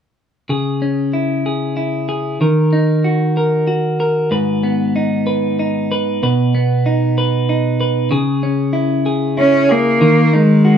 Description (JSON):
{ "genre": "six-eight pop ballad", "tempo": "63 BPM (dotted quarters)", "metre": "6/8", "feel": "straight", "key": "unclear", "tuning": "A4 = 440 Hz", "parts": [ { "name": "clean electric guitar", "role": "accompaniment", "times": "0.5-10.8 s", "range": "G#2 to B4", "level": "-14 LUFS", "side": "equal", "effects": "none" }, { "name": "clear cello", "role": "melody", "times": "9.4-10.8 s", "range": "G#3 to C#4", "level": "-11 LUFS", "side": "equal", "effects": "none" } ], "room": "wet studio ambience, RT60 0.5 s", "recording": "band playing live in one room", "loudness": "-13 LUFS", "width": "side -8 dB against mid", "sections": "0.5-8.1 A section; 8.1-10.8 B section", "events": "none", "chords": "0.5 C#m; 2.4 D#m; 4.3 G#m; 6.2 B; 8.1 C#m; 10.0 D#m", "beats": "| 0.49 1.45 | 2.40 3.36 | 4.31 5.26 | 6.22 7.17 | 8.12 9.07 | 10.02" }